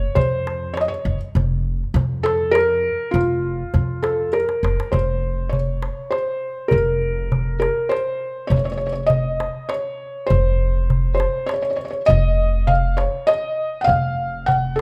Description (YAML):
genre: Arabic maqam ensemble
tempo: 100 BPM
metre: 3/4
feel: straight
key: F maqam hijaz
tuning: A4 = 441 Hz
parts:
  - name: felt-muted upright piano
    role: melody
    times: 0.0-14.8 s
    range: F4 to Gb5+25c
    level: -23 LUFS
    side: equal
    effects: none
  - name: upright bass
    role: bass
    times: 0.0-14.8 s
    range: F1 to F2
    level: -25 LUFS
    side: equal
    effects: none
  - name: darbuka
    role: percussion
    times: 0.2-14.8 s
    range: none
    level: -27 LUFS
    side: equal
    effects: none
room: light reverb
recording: none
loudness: -20 LUFS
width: mono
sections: 0.0-4.9 A section; 4.9-14.8 B section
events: drum fill 4.3-4.9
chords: none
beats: 0.16 0.76 | 1.36 1.95 2.55 | 3.15 3.74 4.34 | 4.93 5.53 6.13 | 6.72 7.32 7.92 | 8.51 9.11 9.71 | 10.30 10.90 11.50 | 12.10 12.69 13.29 | 13.89 14.48